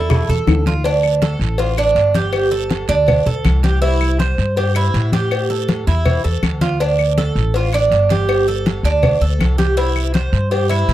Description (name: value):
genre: latin, Cuban son and guajira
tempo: 161 BPM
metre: 4/4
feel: straight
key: D minor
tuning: A4 = 440 Hz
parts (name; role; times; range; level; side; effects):
- Cuban tres; melody; 0.0-0.7 s; A4; -24 LUFS; right 4 dB; none
- Cuban tres; arpeggios; 0.0-10.9 s; D4 to C5; -18 LUFS; right 4 dB; none
- upright bass; bass; 0.0-10.9 s; G1 to A2; -18 LUFS; equal; none
- bongos and cowbell; percussion; 0.1-10.9 s; none; -24 LUFS; left 7 dB; none
- claves; percussion; 0.1-10.9 s; none; -28 LUFS; left 22 dB; none
- congas; percussion; 0.1-10.9 s; none; -20 LUFS; left 1 dB; none
- guiro; percussion; 0.1-10.9 s; none; -33 LUFS; right 20 dB; none
room: little or no reverb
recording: dry, close 1970s-style studio recording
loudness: -14 LUFS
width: side -13 dB against mid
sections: 0.8-10.9 A section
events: none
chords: 0.0 A5; 0.8 Dm; 2.3 Gsus2; 3.8 C; 5.3 A5; 6.8 D5; 8.3 Gsus2; 9.8 C